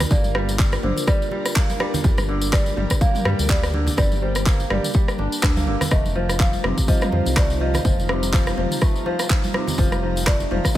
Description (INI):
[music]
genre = afro house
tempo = 124 BPM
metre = 4/4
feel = swing 57% on 16ths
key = G minor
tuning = A4 = 440 Hz
[part]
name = marimba with soft mallets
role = melody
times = 0.0-10.8 s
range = C5 to F5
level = -30 LUFS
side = equal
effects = dub echo
[part]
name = ethereal airy pad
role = sustained chords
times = 0.0-10.8 s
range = G3 to Bb5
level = -30 LUFS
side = equal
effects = ensemble chorus, built-in reverb, sidechain pumping
[part]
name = kora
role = arpeggios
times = 0.0-10.8 s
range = C3 to D4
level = -27 LUFS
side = equal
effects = sidechain pumping, dub echo
[part]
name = round analog bass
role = bass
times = 0.0-10.6 s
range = F1 to G2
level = -24 LUFS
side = equal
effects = tube saturation, sidechain pumping
[part]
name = house drum kit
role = drums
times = 0.0-10.7 s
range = handclaps, rim click, toms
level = -26 LUFS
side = equal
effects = none
[part]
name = congas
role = percussion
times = 0.0-10.8 s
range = none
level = -30 LUFS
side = right 3 dB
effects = none
[part]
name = tambourine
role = percussion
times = 0.0-10.8 s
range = none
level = -32 LUFS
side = left 2 dB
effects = none
[part]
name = electronic kick drum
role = drums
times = 0.1-10.8 s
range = none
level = -19 LUFS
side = equal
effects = none
[sound]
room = small room reverb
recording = none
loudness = -18 LUFS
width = side -14 dB against mid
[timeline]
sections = 0.0-10.8 A section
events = none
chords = 0.0 Gm7; 5.9 F9sus4